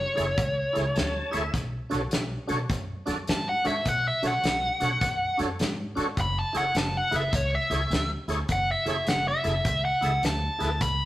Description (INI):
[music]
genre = electric blues shuffle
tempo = 104 BPM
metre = 4/4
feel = swing 64% on 8ths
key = F# minor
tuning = A4 = 438 Hz
[part]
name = biting lead guitar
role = melody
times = 0.0-11.1 s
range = C#5 to B5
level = -26 LUFS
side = equal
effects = overdrive
[part]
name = upright bass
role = bass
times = 0.0-11.0 s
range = F#1 to G#2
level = -31 LUFS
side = equal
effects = none
[part]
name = tonewheel organ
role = accompaniment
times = 0.2-10.7 s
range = D4 to A5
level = -32 LUFS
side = right 1 dB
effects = overdrive, chorus vibrato, slow rotary speaker
[part]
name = warm soul drum kit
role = drums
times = 0.2-11.0 s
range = hi-hat, kick drum, snare drum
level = -31 LUFS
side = equal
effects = none
[sound]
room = moderate stone room reverb, RT60 1.0 s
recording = rough rehearsal-room recording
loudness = -24 LUFS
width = side -15 dB against mid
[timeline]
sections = 0.0-11.1 A section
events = lead electric guitar solo 0.0-11.1; tonewheel organ fill 0.7-1.5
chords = 0.0 F#m7 (rootless); 1.5 Bm7; 6.2 F#m7